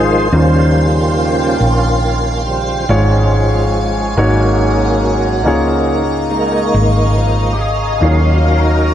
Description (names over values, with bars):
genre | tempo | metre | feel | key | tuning
gospel | 47 BPM (dotted quarters) | 6/8 | straight | Db major | A4 = 441 Hz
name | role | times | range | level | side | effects
warm baby grand piano | accompaniment | 0.0-8.9 s | Ab2 to Db5 | -17 LUFS | left 1 dB | none
bright tonewheel organ | sustained chords | 0.0-8.9 s | Db3 to F5 | -17 LUFS | right 1 dB | slow rotary speaker, chorus vibrato
icy glass pad | sustained chords | 0.0-8.9 s | Eb5 to Db6 | -21 LUFS | equal | chorus, built-in reverb
hollow-body short-scale fingered electric bass | bass | 0.0-8.9 s | Ab1 to Eb2 | -15 LUFS | equal | none
room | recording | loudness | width
moderate plate reverb, RT60 2.7 s | dreamy mix soaked in reverb, lossy compression artefacts | -11 LUFS | side -10 dB against mid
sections
0.0-8.9 A section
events
tonewheel organ solo 0.0-8.9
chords
0.3 Eb13; 2.9 Db/Ab; 4.2 Ab9sus4; 5.5 Db69; 8.0 Ebm9